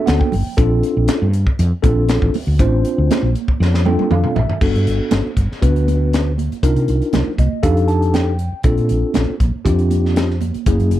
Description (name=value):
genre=electric jazz fusion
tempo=119 BPM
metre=4/4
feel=straight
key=unclear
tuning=A4 = 438 Hz
part: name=tine electric piano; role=accompaniment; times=0.0-11.0 s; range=A#3 to A5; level=-19 LUFS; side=left 1 dB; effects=medium stereo tremolo
part: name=woody fretless electric bass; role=bass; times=0.1-11.0 s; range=F#1 to C3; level=-16 LUFS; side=equal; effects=none
part: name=crisp fusion drum kit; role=drums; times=0.1-11.0 s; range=crash cymbal, hi-hat, kick drum, snare drum, toms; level=-19 LUFS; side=equal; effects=none
part: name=congas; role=percussion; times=0.1-11.0 s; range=none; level=-26 LUFS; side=right 12 dB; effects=none
room=little or no reverb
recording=none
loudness=-14 LUFS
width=side -13 dB against mid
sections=0.0-4.6 A section; 4.6-11.0 B section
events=tine electric piano fill 0.0-0.6, 3.6-4.6, 7.1-8.6; drum fill 3.6-4.6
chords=0.0 Gmaj9; 0.6 Bbmaj9; 4.6 Gmaj9; 6.6 Cm11; 7.6 F13; 8.6 Bbmaj7